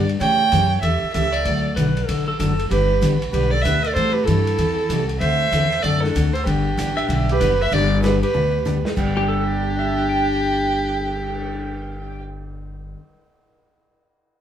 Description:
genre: country, western swing.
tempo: 192 BPM.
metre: 4/4.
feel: swing 62% on 8ths.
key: G major.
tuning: A4 = 442 Hz.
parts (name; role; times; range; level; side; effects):
dark fiddle; melody; 0.0-12.2 s; G4 to G5; -22 LUFS; right 3 dB; none.
breathy clarinet; second line; 0.0-12.2 s; D4 to C#5; -28 LUFS; equal; none.
upright bass; bass; 0.0-12.9 s; F#1 to A2; -23 LUFS; left 1 dB; none.
vintage drum kit; drums; 0.1-11.4 s; crash cymbal, cymbal swell, hi-hat, kick drum, ride cymbal, snare drum, toms; -32 LUFS; left 1 dB; none.
picked steel-string acoustic guitar; accompaniment; 0.2-13.0 s; G2 to A4; -24 LUFS; left 1 dB; none.
pedal steel guitar; second line; 1.8-2.6, 7.0-12.2 s; G4 to G5; -27 LUFS; equal; none.
room: wet studio reverb, RT60 0.6 s.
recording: band playing live in one room.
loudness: -17 LUFS.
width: side -9 dB against mid.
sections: 0.0-7.7 A section; 7.7-9.0 B section; 9.0-11.5 C section.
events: drum fill 8.3-9.0.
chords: 0.2 A7; 1.5 D; 2.7 G; 4.0 Am7; 5.2 D7; 6.5 G.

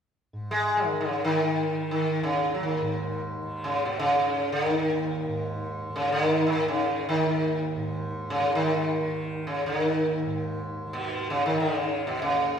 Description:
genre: indian classical, Hindustani.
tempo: free time.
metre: none.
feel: none.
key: unclear.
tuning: A4 = 440 Hz.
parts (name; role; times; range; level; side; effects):
tanpura; drone; 0.3-12.6 s; Eb2 to Eb3; -35 LUFS; right 1 dB; none.
sitar; melody; 0.5-12.6 s; Cb3 to Ab3; -25 LUFS; equal; none.
room: wet scoring stage reverb, RT60 1.7 s.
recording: recorded in a church or concert hall.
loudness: -24 LUFS.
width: side -7 dB against mid.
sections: 0.3-12.6 A section.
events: none.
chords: none.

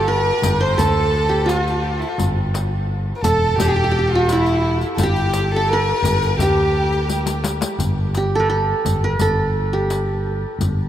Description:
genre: Arabic maqam ensemble.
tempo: 86 BPM.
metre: 4/4.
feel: straight.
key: G maqam rast.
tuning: A4 = 440 Hz.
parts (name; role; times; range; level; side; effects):
qanun; melody; 0.0-10.9 s; E4 to C5; -21 LUFS; right 2 dB; analog delay.
bright studio violin section; second line; 0.0-7.5 s; E4 to C5; -26 LUFS; left 1 dB; none.
warm violin; second line; 0.0-7.4 s; E4 to C5; -25 LUFS; left 2 dB; none.
sustaining fretless electric bass; bass; 0.0-10.9 s; E1 to D2; -21 LUFS; equal; none.
darbuka; percussion; 0.4-10.8 s; none; -26 LUFS; left 1 dB; none.
riq; percussion; 0.4-10.8 s; none; -29 LUFS; left 5 dB; none.
room: moderate huge ambient reverb, RT60 7.7 s.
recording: in a vast, echoing space.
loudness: -16 LUFS.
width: side -11 dB against mid.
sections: 0.0-7.8 A section; 7.8-10.9 B section.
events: drum fill 7.1-7.8.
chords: none.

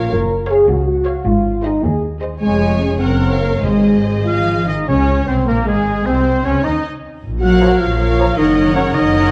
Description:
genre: classical.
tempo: 103 BPM (dotted quarters).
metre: 6/8.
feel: rubato.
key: Db major.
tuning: A4 = 436 Hz.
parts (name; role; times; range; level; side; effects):
rich symphonic violin section; melody; 0.0-9.3 s; Ab3 to Ab5; -31 LUFS; equal; none.
warm symphonic violin section; second line; 0.0-9.3 s; Ab4 to Gb5; -29 LUFS; equal; none.
warm symphonic viola section; accompaniment; 0.0-9.3 s; Ab3 to Db5; -27 LUFS; equal; none.
mellow French horn section; sustained chords; 0.0-9.3 s; Ab3 to Bb4; -20 LUFS; equal; none.
rich symphonic cello section; bass; 0.0-9.3 s; Db2 to Gb3; -23 LUFS; equal; none.
rich symphonic double bass section; bass; 0.0-9.3 s; F1 to Eb2; -22 LUFS; equal; none.
timpani; percussion; 3.6-5.4 s; Ab2 to Db3; -27 LUFS; equal; none.
clear oboe; second line; 4.3-9.3 s; Ab4 to Gb5; -25 LUFS; equal; none.
flute section; second line; 4.9-8.9 s; C4 to Bb5; -30 LUFS; equal; none.
warm clarinet; second line; 4.9-8.8 s; Ab3 to Db5; -28 LUFS; equal; none.
warm bassoon; accompaniment; 4.9-8.8 s; F3 to Eb4; -27 LUFS; equal; none.
room: moderate recital hall reverb, RT60 1.7 s.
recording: dark, warm production.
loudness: -15 LUFS.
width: mono.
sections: 0.0-4.9 A section; 4.9-9.3 B section.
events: none.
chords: 0.1 Gbmaj7; 1.3 Ab; 2.4 Db/F; 3.0 Gb; 3.6 Ab; 4.9 Db5; 6.1 Cm; 7.2 Bbm; 8.4 Ebm7/Gb.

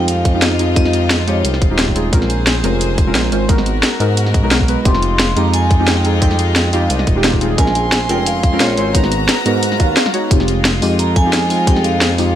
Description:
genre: liquid drum and bass.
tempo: 176 BPM.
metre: 4/4.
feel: swing 53% on 16ths.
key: F minor.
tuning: A4 = 440 Hz.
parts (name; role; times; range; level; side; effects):
vibraphone with hard mallets; melody; 0.0-1.8, 4.9-12.3 s; Cb5 to C6; -22 LUFS; right 1 dB; ping-pong delay.
deep mellow chord stab; accompaniment; 0.0-12.4 s; G3 to Bb5; -19 LUFS; equal; chorus, digital delay.
rich studio string section; sustained chords; 0.0-12.4 s; F3 to C6; -23 LUFS; left 2 dB; sidechain pumping.
smooth synth bass; bass; 0.0-12.3 s; Eb1 to Ab2; -18 LUFS; equal; none.
drum and bass drum kit; drums; 0.1-12.3 s; hi-hat, snare drum; -18 LUFS; equal; small room reverb.
electronic kick drum; drums; 0.3-11.7 s; none; -14 LUFS; equal; small room reverb.
swell; sound effects; 9.7-10.3 s; none; -24 LUFS; right 1 dB; none.
room: light reverb.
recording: none.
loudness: -12 LUFS.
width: side -11 dB against mid.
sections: 0.0-12.4 A section.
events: swell 9.7-10.3.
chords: 0.0 Fm9; 2.1 Bbm9; 3.5 Abm9; 4.9 Fm9; 7.6 Bbm9; 8.9 Abm9; 10.3 Fm9.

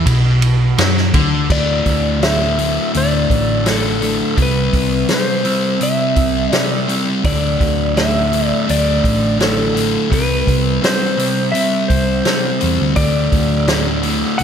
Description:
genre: classic rock.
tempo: 84 BPM.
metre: 4/4.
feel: straight.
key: unclear.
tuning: A4 = 440 Hz.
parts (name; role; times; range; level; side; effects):
sludgy distorted guitar; riff; 0.0-14.4 s; D2 to C4; -19 LUFS; left 8 dB; overdrive, slapback echo.
sludgy distorted guitar; riff; 0.0-14.4 s; D2 to C4; -21 LUFS; right 10 dB; overdrive.
hollow-body short-scale picked electric bass; bass; 0.0-14.4 s; A1 to F#2; -19 LUFS; equal; none.
vintage drum kit; drums; 0.1-14.4 s; crash cymbal, hi-hat, kick drum, ride cymbal, snare drum; -20 LUFS; equal; none.
clean lap steel guitar; melody; 1.5-14.4 s; A4 to F#5; -20 LUFS; left 1 dB; slapback echo.
room: moderate lush hall reverb, RT60 1.8 s, small room reverb.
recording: big arena sound.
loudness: -13 LUFS.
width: side -8 dB against mid.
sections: 0.0-1.5 A section; 1.5-14.4 B section.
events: none.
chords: 0.0 N.C.; 1.5 D5; 4.4 C; 7.2 D5; 10.1 C5; 13.0 D5.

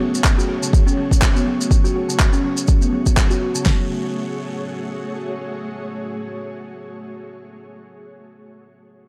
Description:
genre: afro house.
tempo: 123 BPM.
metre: 4/4.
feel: swing 56% on 16ths.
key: F# minor.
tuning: A4 = 441 Hz.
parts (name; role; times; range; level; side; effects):
ethereal airy pad; sustained chords; 0.0-7.1 s; A3 to C#5; -32 LUFS; equal; ensemble chorus, built-in reverb, sidechain pumping.
buzzing kalimba; arpeggios; 0.0-3.9 s; C#3 to F#4; -26 LUFS; equal; sidechain pumping, low-pass filter, dub echo.
maracas; percussion; 0.1-3.6 s; none; -30 LUFS; equal; none.
deep house drum kit; drums; 0.2-3.8 s; handclaps, kick drum, snare drum; -18 LUFS; equal; none.
electronic handclaps; drums; 0.2-3.3 s; none; -25 LUFS; equal; none.
room: light reverb, small room reverb.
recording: dark, warm production.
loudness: -19 LUFS.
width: mono.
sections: 0.0-3.7 A section; 3.7-7.6 B section.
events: filter sweep on kalimba 0.0-3.7.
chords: 0.0 F#madd9.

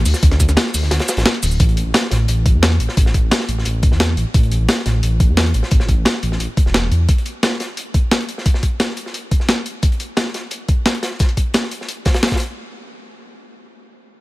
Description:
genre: liquid drum and bass.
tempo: 175 BPM.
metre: 4/4.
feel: straight.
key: unclear.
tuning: A4 = 444 Hz.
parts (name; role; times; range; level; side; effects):
dark detuned saw bass; bass; 0.0-7.1 s; D1 to E2; -16 LUFS; equal; none.
breakbeat sampler-style drum kit; drums; 0.1-12.5 s; hi-hat, shaker, snare drum; -20 LUFS; equal; none.
crunchy breakbeat drum kit; drums; 0.1-12.5 s; hi-hat, snare drum; -25 LUFS; equal; high-pass filter on hats, high-pass filter on snare, high-pass filter on room.
electronic kick drum; drums; 0.2-12.4 s; none; -15 LUFS; equal; overdrive.
room: little or no reverb.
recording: none.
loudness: -14 LUFS.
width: side -19 dB against mid.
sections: 0.0-1.6 A section; 1.6-12.6 B section; 12.6-14.2 C section.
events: drop 0.0-1.6; break 0.9-1.6.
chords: none.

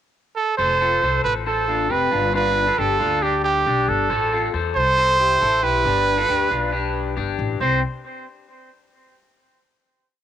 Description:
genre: jangly indie pop.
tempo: 137 BPM.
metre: 4/4.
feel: straight.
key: unclear.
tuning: A4 = 439 Hz.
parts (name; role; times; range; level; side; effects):
brilliant trumpet; melody; 0.4-7.8 s; G4 to C5; -19 LUFS; right 4 dB; cassette tape.
electric guitar through a small old amp; arpeggios; 0.6-7.8 s; C4 to C5; -24 LUFS; left 10 dB; phaser, cassette tape, analog delay.
upright bass; bass; 0.6-7.8 s; F1 to E2; -27 LUFS; left 2 dB; none.
room: moderate spring reverb, RT60 2.5 s.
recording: home recording on cassette.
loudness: -17 LUFS.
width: side -10 dB against mid.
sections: 0.0-0.6 pickup bar; 0.6-7.6 bridge; 7.6-9.4 final note.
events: none.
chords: 0.0 N.C.; 0.6 F; 2.1 G7; 4.1 Am; 5.9 Gadd9; 7.6 N.C..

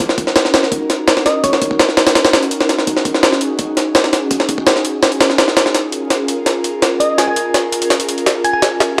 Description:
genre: drum and bass, jungle.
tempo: 167 BPM.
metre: 4/4.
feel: straight.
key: Eb minor.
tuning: A4 = 440 Hz.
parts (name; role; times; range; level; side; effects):
airy breathy pad; sustained chords; 0.0-9.0 s; Db4 to Bb4; -22 LUFS; equal; chorus.
jungle sampler-style drum kit; drums; 0.0-8.9 s; hi-hat, kick drum, snare drum; -16 LUFS; equal; high-pass filter on hats, high-pass filter on kick, high-pass filter on snare.
thumb-piano-like synth pluck; melody; 1.3-1.8, 7.0-8.6 s; Db5 to Ab5; -21 LUFS; equal; chorus, dub echo.
room: moderate echo chamber reverb, RT60 1.3 s.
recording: dry, gritty hardware recording, transformer saturation, vinyl crackle.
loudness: -15 LUFS.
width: mono.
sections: 0.0-9.0 A section.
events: build-up 0.0-9.0; drum fill 5.7-9.0.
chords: 0.0 Ebm7; 5.7 Bbm7.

